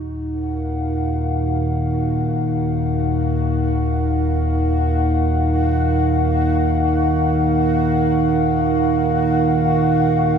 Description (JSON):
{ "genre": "dark ambient drone", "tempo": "free time", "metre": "none", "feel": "none", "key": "Eb minor", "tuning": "A4 = 443 Hz", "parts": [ { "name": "dark analog pad", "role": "sustained chords", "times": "0.0-10.4 s", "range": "Eb4 to Gb5", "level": "-19 LUFS", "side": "right 1 dB", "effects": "chorus" }, { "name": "analog drone", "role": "drone", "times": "0.0-10.4 s", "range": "Eb2 to Bb2", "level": "-19 LUFS", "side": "equal", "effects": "chorus" }, { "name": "bubbling stepped-filter texture", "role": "texture", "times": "0.0-10.4 s", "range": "Gb4", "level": "-34 LUFS", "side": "equal", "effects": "chorus, built-in reverb" } ], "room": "wet cathedral reverb, RT60 7.6 s", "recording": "in a vast, echoing space", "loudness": "-16 LUFS", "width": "side -7 dB against mid", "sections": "0.0-10.4 A section", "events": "fade-in on synth texture 0.0-10.4; filter sweep on synth drone 0.0-10.4", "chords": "0.0 Ebm", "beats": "free time" }